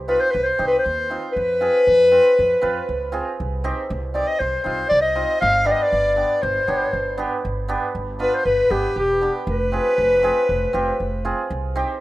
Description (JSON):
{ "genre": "klezmer", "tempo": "118 BPM", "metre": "4/4", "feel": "straight", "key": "unclear", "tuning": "A4 = 442 Hz", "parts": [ { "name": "upright bass", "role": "bass", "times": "0.0-11.8 s", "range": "E1 to F2", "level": "-28 LUFS", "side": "right 1 dB", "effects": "none" }, { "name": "mellow clarinet", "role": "melody", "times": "0.1-11.2 s", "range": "G4 to F5", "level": "-18 LUFS", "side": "left 1 dB", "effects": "none" }, { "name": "rich violin", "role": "second line", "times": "0.1-11.2 s", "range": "G4 to F5", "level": "-32 LUFS", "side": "right 2 dB", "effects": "none" }, { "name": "hammered dulcimer", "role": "accompaniment", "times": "0.1-11.9 s", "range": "B3 to B4", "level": "-26 LUFS", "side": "right 3 dB", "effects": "none" } ], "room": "moderate plate reverb, RT60 3.5 s", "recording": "rough home demo mix", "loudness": "-17 LUFS", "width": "side -16 dB against mid", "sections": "0.0-1.4 A section; 1.4-12.0 A section", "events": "none", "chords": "0.0 Cm; 1.4 Fm; 3.4 Cm; 5.4 G; 9.5 Fm", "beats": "0.34 0.85 | 1.36 1.86 2.37 2.88 | 3.38 3.89 4.40 4.91 | 5.41 5.92 6.43 6.93 | 7.44 7.95 8.46 8.97 | 9.48 9.99 10.50 11.01 | 11.52" }